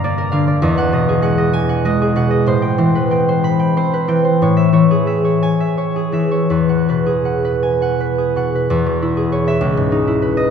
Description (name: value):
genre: classical, solo harp piece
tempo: 52-70 BPM (dotted quarters)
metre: 6/8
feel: rubato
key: E major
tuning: A4 = 440 Hz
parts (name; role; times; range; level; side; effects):
- concert harp; solo; 0.0-10.5 s; C#2 to B5; -14 LUFS; equal; none
room: wet cathedral reverb, RT60 5.9 s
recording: recorded in a church or concert hall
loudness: -14 LUFS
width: side -7 dB against mid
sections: 0.0-8.7 A section; 8.7-10.5 B section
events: none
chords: 0.0 Gm7; 0.6 Emaj9; 2.5 Am9; 4.4 Amaj7; 6.5 Eadd9; 8.7 E6; 9.6 C#m9